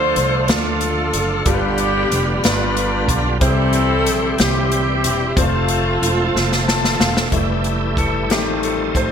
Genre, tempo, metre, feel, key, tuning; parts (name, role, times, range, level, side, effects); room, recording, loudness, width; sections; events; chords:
slow gospel; 62 BPM (dotted quarters); 6/8; straight; F major; A4 = 443 Hz
clear saxophone section; melody; 0.0-7.0 s; A3 to C5; -20 LUFS; equal
bright grand piano; accompaniment; 0.0-9.1 s; G2 to A5; -23 LUFS; left 4 dB; wide subtle chorus
bright tonewheel organ; sustained chords; 0.0-9.1 s; D3 to A4; -23 LUFS; right 2 dB; slow rotary speaker, overdrive, chorus vibrato
upright bass; bass; 0.0-9.1 s; E1 to D2; -22 LUFS; right 1 dB
swinging big-band drum kit; drums; 0.2-9.1 s; hi-hat, kick drum, snare drum; -21 LUFS; equal
light reverb, small room ambience; bright 1980s-style digital production; -15 LUFS; side -7 dB against mid
0.0-7.3 A section; 7.3-9.1 B section
drum fill 6.3-7.3; grand piano fill 6.3-7.3; grand piano solo 7.3-9.1
0.0 Dm; 1.5 G7; 3.4 C; 5.4 F; 7.3 Fmaj9; 8.3 F7/A